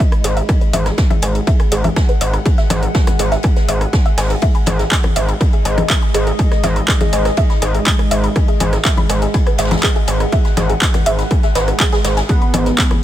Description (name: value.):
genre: melodic techno.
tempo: 122 BPM.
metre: 4/4.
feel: straight.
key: G# minor.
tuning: A4 = 440 Hz.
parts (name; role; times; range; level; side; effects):
deep dark ambient pad; sustained chords; 0.0-13.0 s; G#3 to F#5; -24 LUFS; equal; chorus, built-in reverb, sidechain pumping.
woody wave-folded pluck; arpeggios; 0.0-12.9 s; G#4 to B5; -23 LUFS; equal; analog chorus, sidechain pumping, ping-pong delay.
electronic kick drum; drums; 0.0-12.9 s; none; -14 LUFS; equal; overdrive, studio reverb.
techno drum kit; drums; 0.0-13.0 s; congas, handclaps, hi-hat, rim click; -20 LUFS; left 1 dB; overdrive, studio reverb, sidechain pumping on hats, sidechain pumping on cymbals, sidechain pumping on perc.
gritty driven synth bass; bass; 0.2-12.7 s; G#1; -17 LUFS; equal; tube saturation, sidechain pumping.
swinging big-band drum kit; drums; 0.2-13.0 s; hi-hat, ride cymbal, snare drum; -29 LUFS; left 1 dB; high-pass filter on hats, studio reverb, high-pass filter on cymbals, high-pass filter on snare, high-pass filter on room.
resonant sweep polysynth; melody; 12.3-12.9 s; B3; -20 LUFS; right 1 dB; chorus, cassette tape, sidechain pumping.
room: little or no reverb.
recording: none.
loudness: -12 LUFS.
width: side -12 dB against mid.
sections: 0.0-13.0 A section.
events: none.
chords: 0.0 G#m.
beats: 0.00 | 0.49 0.98 1.47 1.96 | 2.46 2.95 3.44 3.93 | 4.42 4.92 5.41 5.90 | 6.39 6.88 7.37 7.87 | 8.36 8.85 9.34 9.83 | 10.32 10.82 11.31 11.80 | 12.29 12.78.